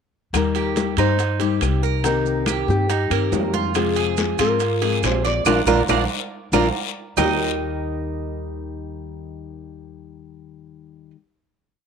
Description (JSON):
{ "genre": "latin, Cuban son and guajira", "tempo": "140 BPM", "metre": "4/4", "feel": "straight", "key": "Eb major", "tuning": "A4 = 440 Hz", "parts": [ { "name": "nylon-string guitar", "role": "accompaniment", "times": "0.3-11.2 s", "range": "C3 to G4", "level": "-26 LUFS", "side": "left 14 dB", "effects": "none" }, { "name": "upright bass", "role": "bass", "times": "0.3-11.1 s", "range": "Bb1 to Ab2", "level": "-25 LUFS", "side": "equal", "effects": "none" }, { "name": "bongos", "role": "percussion", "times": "0.3-7.3 s", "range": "none", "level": "-30 LUFS", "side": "left 15 dB", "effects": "none" }, { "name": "claves", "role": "percussion", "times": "0.3-7.3 s", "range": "none", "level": "-28 LUFS", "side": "left 15 dB", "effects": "none" }, { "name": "maracas", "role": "percussion", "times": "0.3-7.3 s", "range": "none", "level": "-34 LUFS", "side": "right 18 dB", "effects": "none" }, { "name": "timbales", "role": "percussion", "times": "0.3-7.3 s", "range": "none", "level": "-29 LUFS", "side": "right 13 dB", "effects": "none" }, { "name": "nylon-string guitar", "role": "melody", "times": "0.4-11.1 s", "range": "F4 to G5", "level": "-25 LUFS", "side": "equal", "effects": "none" }, { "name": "congas", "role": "percussion", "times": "0.4-7.3 s", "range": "none", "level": "-31 LUFS", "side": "right 1 dB", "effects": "none" }, { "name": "Cuban tres", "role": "arpeggios", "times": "0.6-11.1 s", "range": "D4 to Eb5", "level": "-25 LUFS", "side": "right 10 dB", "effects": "none" }, { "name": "guiro", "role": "percussion", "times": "3.7-7.3 s", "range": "none", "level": "-32 LUFS", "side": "left 15 dB", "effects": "none" } ], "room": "moderate spring reverb, RT60 1.4 s, small room ambience", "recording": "1960s-style stereo with parts hard left and right", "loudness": "-18 LUFS", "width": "side -6 dB against mid", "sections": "0.3-7.2 verse; 7.2-10.6 final chord", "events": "band accent 5.5-7.2; drum fill 6.3-7.2", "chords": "0.3 Eb; 2.0 Cm7; 3.8 Fm; 5.5 Bb; 7.2 Eb", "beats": "| 0.34 0.77 1.19 1.62 | 2.04 2.47 2.90 3.33 | 3.75 4.18 4.61 5.03 | 5.46 5.89 6.32 6.75 | 7.17 7.60 8.03 8.46 | 8.89 9.31 9.74 10.17" }